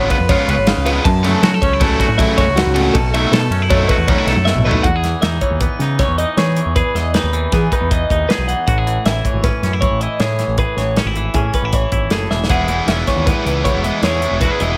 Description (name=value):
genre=math rock and midwest emo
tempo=157 BPM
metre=5/4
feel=straight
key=E major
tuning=A4 = 440 Hz
part: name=twangy electric guitar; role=accompaniment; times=0.0-14.8 s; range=E2 to B4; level=-24 LUFS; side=equal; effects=none
part: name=twelve-string electric guitar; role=arpeggios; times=0.0-14.8 s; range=F#4 to A5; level=-23 LUFS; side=equal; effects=plate reverb
part: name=biting overdriven guitar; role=riff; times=0.0-4.9, 12.5-14.8 s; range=B2 to E#4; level=-22 LUFS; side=equal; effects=none
part: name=growling picked electric bass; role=bass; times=0.0-14.8 s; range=E1 to F#3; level=-21 LUFS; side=equal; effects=overdrive
part: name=modern studio drum kit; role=drums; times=0.1-14.7 s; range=hi-hat, kick drum, ride cymbal, snare drum, toms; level=-21 LUFS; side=equal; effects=none
room=light reverb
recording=none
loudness=-16 LUFS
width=mono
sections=0.0-4.9 A section; 4.9-14.8 B section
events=drum fill 4.5-4.9, 12.3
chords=0.0 C#7; 1.1 F#m7; 3.0 B7sus4; 4.9 Emaj7; 8.7 Amaj7; 12.5 Emaj7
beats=0.29 0.67 | 1.05 1.43 1.81 2.19 2.57 | 2.95 3.33 3.71 4.09 4.47 | 4.85 5.24 5.62 6.00 6.38 | 6.76 7.14 7.53 7.91 8.29 | 8.68 9.06 9.44 9.82 10.21 | 10.59 10.97 11.36 11.74 12.12 | 12.50 12.89 13.27 13.65 14.04 | 14.42